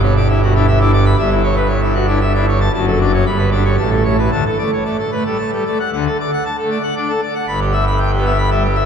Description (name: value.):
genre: classical, organ toccata.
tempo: 115 BPM.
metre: 3/4.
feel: straight.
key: D major.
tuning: A4 = 439 Hz.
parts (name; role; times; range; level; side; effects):
pipe organ, full organ; solo; 0.0-8.9 s; F#1 to B5; -13 LUFS; equal; none.
room: wet cathedral reverb, RT60 5.6 s.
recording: dark, warm production.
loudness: -13 LUFS.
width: side -7 dB against mid.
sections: 0.0-5.9 A section; 5.9-8.9 B section.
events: none.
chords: 0.0 Em7/G; 1.2 A7/G; 2.7 D/F#; 3.3 G; 3.8 A; 4.3 D; 7.5 Em/G.